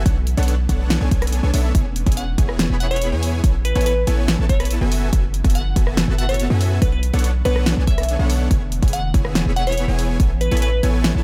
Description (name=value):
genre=future bass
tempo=142 BPM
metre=4/4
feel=half-time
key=E mixolydian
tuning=A4 = 441 Hz
part: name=ethereal airy pad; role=sustained chords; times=0.0-11.2 s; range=A2 to E4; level=-36 LUFS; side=equal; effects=none
part: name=dense compressed supersaw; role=riff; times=0.0-11.2 s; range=B3 to B5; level=-29 LUFS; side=equal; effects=sidechain pumping
part: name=warm 808-style bass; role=bass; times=0.0-11.2 s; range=E1 to F#2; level=-22 LUFS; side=equal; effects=sidechain pumping
part: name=electronic kick drum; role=drums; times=0.1-10.3 s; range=none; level=-20 LUFS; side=equal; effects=none
part: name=pop drum kit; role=drums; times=0.1-11.1 s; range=hi-hat, rim click, snare drum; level=-26 LUFS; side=equal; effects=none
part: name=glassy wavetable pluck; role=melody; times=2.2-10.8 s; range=B4 to F#5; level=-28 LUFS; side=equal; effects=chorus, sidechain pumping, dub echo
room=little or no reverb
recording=none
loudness=-19 LUFS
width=mono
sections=0.0-11.2 A section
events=none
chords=0.1 Bm9; 1.7 E6; 3.4 Amaj9; 4.9 F#m11; 6.8 Bm9; 8.5 E6; 10.2 Amaj9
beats=| 0.06 0.48 0.90 1.32 | 1.75 2.17 2.59 3.02 | 3.44 3.86 4.28 4.71 | 5.13 5.55 5.97 6.40 | 6.82 7.24 7.66 8.09 | 8.51 8.93 9.35 9.78 | 10.20 10.62 11.04